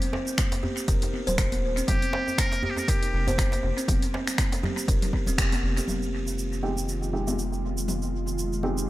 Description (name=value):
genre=afro house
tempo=120 BPM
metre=4/4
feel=swing 56% on 16ths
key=F minor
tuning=A4 = 440 Hz
part: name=buzzing kalimba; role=arpeggios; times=0.0-5.8 s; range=Bb3 to C5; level=-32 LUFS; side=right 1 dB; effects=sidechain pumping, dub echo
part: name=house drum kit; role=drums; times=0.0-8.9 s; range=cabasa, finger snaps, hi-hat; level=-32 LUFS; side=equal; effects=studio reverb, dub echo
part: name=djembe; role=percussion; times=0.1-5.9 s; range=none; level=-35 LUFS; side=right 1 dB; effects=none
part: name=electronic kick drum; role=drums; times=0.4-5.5 s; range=none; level=-26 LUFS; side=equal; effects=studio reverb
part: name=congas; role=percussion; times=0.6-8.7 s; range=none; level=-36 LUFS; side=left 1 dB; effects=dub echo
part: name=round analog bass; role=bass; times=0.9-8.9 s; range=Eb1 to F1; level=-30 LUFS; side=equal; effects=sidechain pumping
part: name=trumpet with metal mute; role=melody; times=1.9-3.6 s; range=G4 to Bb4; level=-34 LUFS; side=equal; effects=dub echo
part: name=ethereal airy pad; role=sustained chords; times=6.3-8.9 s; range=Eb3 to F4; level=-34 LUFS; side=equal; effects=ensemble chorus, built-in reverb, sidechain pumping
part: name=felt-muted upright piano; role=stabs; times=6.6-8.9 s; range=Ab3 to G4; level=-32 LUFS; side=right 2 dB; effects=sidechain pumping, low-pass filter, dub echo
room=light reverb, small room reverb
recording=echo-heavy mix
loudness=-24 LUFS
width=side -16 dB against mid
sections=0.0-5.9 A section; 5.9-8.9 B section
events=band accent 5.4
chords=0.0 Cm7; 5.9 Fm7